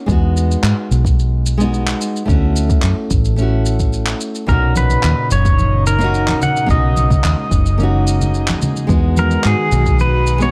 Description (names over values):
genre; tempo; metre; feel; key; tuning
sunset chillout; 109 BPM; 4/4; straight; B major; A4 = 440 Hz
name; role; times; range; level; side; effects
nylon-string guitar; accompaniment; 0.0-10.5 s; A#2 to F#4; -24 LUFS; equal; digital delay
fingered electric bass; bass; 0.1-10.5 s; F#1 to G#2; -18 LUFS; equal; tube saturation
electronic kick drum; drums; 0.1-10.0 s; none; -19 LUFS; equal; none
electronic shaker and handclaps; drums; 0.1-10.5 s; none; -27 LUFS; equal; none
pedal steel guitar; melody; 4.5-10.5 s; G#4 to F#5; -22 LUFS; equal; delay
airy breathy pad; sustained chords; 4.5-10.5 s; A#2 to F#4; -25 LUFS; equal; chorus
congas; percussion; 4.8-10.1 s; none; -26 LUFS; equal; none
room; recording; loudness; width
light reverb, digital ambience; dark, warm production; -15 LUFS; mono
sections
0.0-10.5 A section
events
none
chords
0.1 Emaj9; 2.3 Dmaj9; 4.5 Bmaj9; 8.9 Emaj9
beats
| 0.09 0.64 1.19 1.74 | 2.29 2.84 3.39 3.94 | 4.49 5.04 5.59 6.14 | 6.69 7.24 7.79 8.34 | 8.89 9.44 9.99